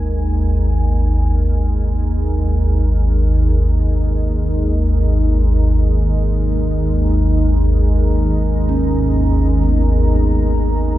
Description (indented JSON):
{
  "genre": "dark ambient drone",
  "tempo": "free time",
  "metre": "none",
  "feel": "none",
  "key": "unclear",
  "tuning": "A4 = 440 Hz",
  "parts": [
    { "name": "deep dark ambient pad", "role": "sustained chords", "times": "0.0-11.0 s", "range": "G#3 to A#5", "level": "-22 LUFS", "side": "equal", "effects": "chorus, built-in reverb" },
    { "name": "deep rumbling drone", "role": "drone", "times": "0.0-11.0 s", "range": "G#1 to D#2", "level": "-14 LUFS", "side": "equal", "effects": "built-in reverb, phaser, wide subtle chorus" },
    { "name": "gamelan-type bronze metallophone", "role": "arpeggios", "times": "8.7-11.0 s", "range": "B3 to C#4", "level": "-22 LUFS", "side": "right 3 dB", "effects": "tape echo" }
  ],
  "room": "wet cathedral reverb, RT60 6.1 s",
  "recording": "dark, warm production",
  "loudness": "-14 LUFS",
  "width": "side -14 dB against mid",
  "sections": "0.0-11.0 A section",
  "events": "fade-in on ambient pad 0.0-11.0",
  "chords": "0.0 G#5"
}